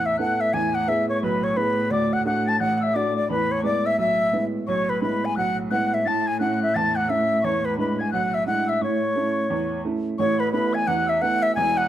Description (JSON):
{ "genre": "celtic folk, Celtic hornpipe", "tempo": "174 BPM", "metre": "4/4", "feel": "swing 61% on 8ths", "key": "A major", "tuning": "A4 = 440 Hz", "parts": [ { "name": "bright baroque flute", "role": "melody", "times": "0.0-11.9 s", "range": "B4 to A5", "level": "-23 LUFS", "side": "left 1 dB", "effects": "plate reverb" }, { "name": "mellow hollow wooden whistle", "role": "second line", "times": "0.0-11.9 s", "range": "B5 to A6", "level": "-30 LUFS", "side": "left 6 dB", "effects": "none" }, { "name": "clear upright piano", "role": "accompaniment", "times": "0.0-11.9 s", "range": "E1 to A4", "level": "-26 LUFS", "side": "right 3 dB", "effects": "none" }, { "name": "warm cello", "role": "drone", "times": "0.0-10.2 s", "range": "A2", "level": "-29 LUFS", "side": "equal", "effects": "none" } ], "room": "moderate studio reverb, RT60 0.8 s", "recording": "none", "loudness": "-20 LUFS", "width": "side -12 dB against mid", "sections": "0.0-10.2 A section; 10.2-11.9 A section", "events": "none", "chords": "0.0 Asus2; 0.5 E; 1.9 D; 3.3 E; 6.1 A; 7.4 E7; 8.8 A; 10.2 Asus2", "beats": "0.19 | 0.53 0.88 1.22 1.57 | 1.91 2.26 2.60 2.95 | 3.29 3.64 3.98 4.33 | 4.67 5.02 5.36 5.71 | 6.05 6.40 6.74 7.09 | 7.43 7.78 8.12 8.46 | 8.81 9.15 9.50 9.84 | 10.18 10.53 10.87 11.21 | 11.56" }